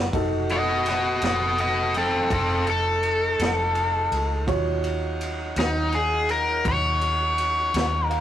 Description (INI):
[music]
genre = slow blues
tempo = 55 BPM (dotted quarters)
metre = 12/8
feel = straight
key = unclear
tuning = A4 = 444 Hz
[part]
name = warm upright piano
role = accompaniment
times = 0.0-8.2 s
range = Eb4 to Bb5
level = -32 LUFS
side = right 3 dB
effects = none
[part]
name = vintage muted fingered electric bass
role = bass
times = 0.0-8.2 s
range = F1 to Eb2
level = -28 LUFS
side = equal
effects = none
[part]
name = mellow saxophone section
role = sustained chords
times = 0.1-8.2 s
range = F3 to Gb4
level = -34 LUFS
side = equal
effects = none
[part]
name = vintage drum kit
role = drums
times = 0.1-8.2 s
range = kick drum, ride cymbal, snare drum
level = -30 LUFS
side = equal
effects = none
[part]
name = cranked stack guitar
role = melody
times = 0.5-8.2 s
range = C4 to Eb5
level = -22 LUFS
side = left 1 dB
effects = overdrive
[sound]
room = moderate stone room reverb, RT60 1.0 s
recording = rough rehearsal-room recording, warm saturation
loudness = -21 LUFS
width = side -11 dB against mid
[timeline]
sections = 0.0-8.2 A section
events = overdriven electric guitar solo 0.0-8.2; upright piano fill 7.7-8.2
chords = 0.1 F7b9; 4.5 Ebm7